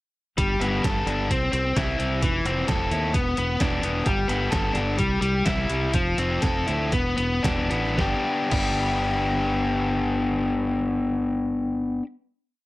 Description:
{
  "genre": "indie rock",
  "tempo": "110-131 BPM",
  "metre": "4/4",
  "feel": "straight",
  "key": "G mixolydian",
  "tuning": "A4 = 440 Hz",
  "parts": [
    { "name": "biting overdriven guitar", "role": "riff", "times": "0.4-12.1 s", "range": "E3 to A4", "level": "-23 LUFS", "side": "left 2 dB", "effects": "none" },
    { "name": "fingered electric bass", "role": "bass", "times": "0.4-12.0 s", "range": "E1 to Eb2", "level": "-28 LUFS", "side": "right 1 dB", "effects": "none" },
    { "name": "trip hop sampler-style drum kit", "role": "drums", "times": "0.4-8.7 s", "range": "crash cymbal, hi-hat, kick drum, snare drum", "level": "-27 LUFS", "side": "right 1 dB", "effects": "none" }
  ],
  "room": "light reverb",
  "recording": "none",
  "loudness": "-22 LUFS",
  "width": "side -18 dB against mid",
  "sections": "0.4-8.0 interlude; 8.0-12.3 final chord",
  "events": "slowing down 4.1-8.0",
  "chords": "0.4 Gadd9; 1.3 C; 2.2 Fmaj7; 3.1 E5; 4.1 Gadd9; 5.0 C; 5.9 Fmaj7; 6.9 E5; 8.0 G",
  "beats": "| 0.38 0.84 1.30 1.76 | 2.22 2.68 3.14 3.60 | 4.06 4.52 4.99 5.46 | 5.94 6.42 6.92 7.44 | 7.97 8.52 9.06 9.60 | 10.14 10.69 11.23 11.78"
}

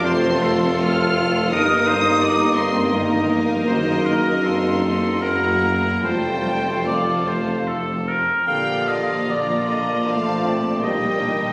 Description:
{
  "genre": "classical",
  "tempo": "71-88 BPM",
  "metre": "3/4",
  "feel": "rubato",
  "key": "Bb major",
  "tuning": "A4 = 442 Hz",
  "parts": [
    { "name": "rich symphonic violin section", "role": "melody", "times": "0.0-11.5 s", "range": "D5 to F6", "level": "-32 LUFS", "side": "equal", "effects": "none" },
    { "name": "clear clarinet", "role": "second line", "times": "0.0-11.5 s", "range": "Eb4 to G4", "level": "-32 LUFS", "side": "equal", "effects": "none" },
    { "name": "clear oboe", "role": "second line", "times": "0.0-11.5 s", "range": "A4 to F5", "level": "-26 LUFS", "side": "equal", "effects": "none" },
    { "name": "mellow small flute group", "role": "second line", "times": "0.0-11.5 s", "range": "F4 to F6", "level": "-32 LUFS", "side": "equal", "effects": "none" },
    { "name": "warm symphonic violin section", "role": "second line", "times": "0.0-11.5 s", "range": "A4 to G5", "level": "-33 LUFS", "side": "equal", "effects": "none" },
    { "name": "clear symphonic viola section", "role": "accompaniment", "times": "0.0-11.5 s", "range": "D3 to F4", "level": "-33 LUFS", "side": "equal", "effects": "none" },
    { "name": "dark bassoon", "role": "accompaniment", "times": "0.0-11.5 s", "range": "A3 to D4", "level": "-31 LUFS", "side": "equal", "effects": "none" },
    { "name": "dark trombone section", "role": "sustained chords", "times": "0.0-8.1 s", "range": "F3 to Bb3", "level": "-31 LUFS", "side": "equal", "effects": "none" },
    { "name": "warm French horn section", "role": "sustained chords", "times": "0.0-11.5 s", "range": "D3 to F4", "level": "-29 LUFS", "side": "equal", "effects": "none" },
    { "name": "rich symphonic double bass section", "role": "bass", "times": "0.0-11.5 s", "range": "Bb1 to G2", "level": "-33 LUFS", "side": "equal", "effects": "none" },
    { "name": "warm symphonic cello section", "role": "bass", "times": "0.0-11.5 s", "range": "Bb2 to F4", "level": "-30 LUFS", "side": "equal", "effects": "none" },
    { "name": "warm tuba", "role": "bass", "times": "0.0-8.2 s", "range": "F1 to G1", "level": "-28 LUFS", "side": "equal", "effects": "none" }
  ],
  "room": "wet concert hall reverb, RT60 1.9 s",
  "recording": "recorded on a phone in the room, studio reverb",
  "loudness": "-20 LUFS",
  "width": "mono",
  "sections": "0.0-8.5 A section; 8.5-11.5 B section",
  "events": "none",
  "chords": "0.0 F; 1.5 Eb/G; 3.7 Ebm/Gb; 5.2 Gb7; 6.0 F; 8.5 Bb; 10.8 Eb/Bb",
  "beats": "0.05 0.81 | 1.52 2.21 2.94 | 3.66 4.44 5.21 | 6.03 6.86 7.67 | 8.47 9.30 10.07 | 10.83"
}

